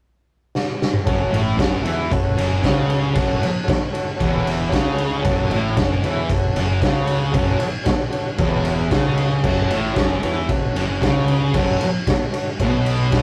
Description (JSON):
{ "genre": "garage rock duo or trio", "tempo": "114 BPM", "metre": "4/4", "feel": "straight", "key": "F# minor", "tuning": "A4 = 440 Hz", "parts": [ { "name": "raw garage drum kit", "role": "drums", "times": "0.6-13.2 s", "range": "crash cymbal, kick drum, ride cymbal, snare drum, toms", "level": "-24 LUFS", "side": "equal", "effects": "none" }, { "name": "overdriven combo organ", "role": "sustained chords", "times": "1.1-13.2 s", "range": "F#4 to E5", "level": "-28 LUFS", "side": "equal", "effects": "none" }, { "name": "thick fuzz guitar", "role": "riff", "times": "1.1-13.2 s", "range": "E2 to E3", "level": "-23 LUFS", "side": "equal", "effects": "distortion" }, { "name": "fuzz fingered electric bass", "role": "bass", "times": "1.1-13.2 s", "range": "E1 to E2", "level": "-29 LUFS", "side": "equal", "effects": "overdrive" } ], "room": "moderate booth ambience, RT60 0.3 s", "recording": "rough rehearsal-room recording, tube saturation, faint mains hum", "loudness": "-20 LUFS", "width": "mono", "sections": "0.0-1.1 A section; 1.1-13.2 B section", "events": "drum fill 0.5-1.1", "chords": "0.0 N.C.; 1.1 F#m" }